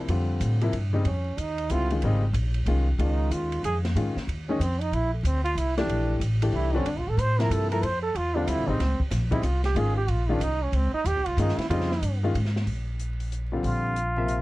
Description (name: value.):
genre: modal jazz.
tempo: 186 BPM.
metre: 3/4.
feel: swing 64% on 8ths.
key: unclear.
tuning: A4 = 440 Hz.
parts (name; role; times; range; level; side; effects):
warm baby grand piano; accompaniment; 0.0-14.4 s; C3 to E5; -29 LUFS; left 3 dB; none.
upright bass; bass; 0.1-14.4 s; Ab1 to A2; -26 LUFS; equal; none.
open jazz drum kit; drums; 0.1-14.4 s; hi-hat, kick drum, ride cymbal, snare drum; -37 LUFS; equal; vintage 12-bit sampler grit.
bright trombone; second line; 1.1-12.2 s; A3 to C5; -29 LUFS; right 3 dB; none.
trumpet with plunger mute; melody; 13.6-14.4 s; F4; -28 LUFS; equal; none.
room: light reverb.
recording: vinyl crackle.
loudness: -23 LUFS.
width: side -18 dB against mid.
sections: 0.0-12.7 A section; 12.7-14.4 B section.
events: trombone solo 0.0-12.7.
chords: 0.0 Bbmaj9 (rootless); 1.1 Dbmaj9; 4.9 Bbmaj9; 8.8 Dbmaj9; 12.7 Bbadd9.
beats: | 0.09 0.41 0.73 | 1.05 1.38 1.70 | 2.02 2.34 2.66 | 2.99 3.31 3.63 | 3.95 4.28 4.60 | 4.92 5.24 5.57 | 5.89 6.21 6.53 | 6.86 7.18 7.50 | 7.82 8.15 8.47 | 8.79 9.11 9.44 | 9.76 10.08 10.40 | 10.73 11.05 11.37 | 11.70 12.02 12.34 | 12.66 12.99 13.31 | 13.64 13.96 14.28.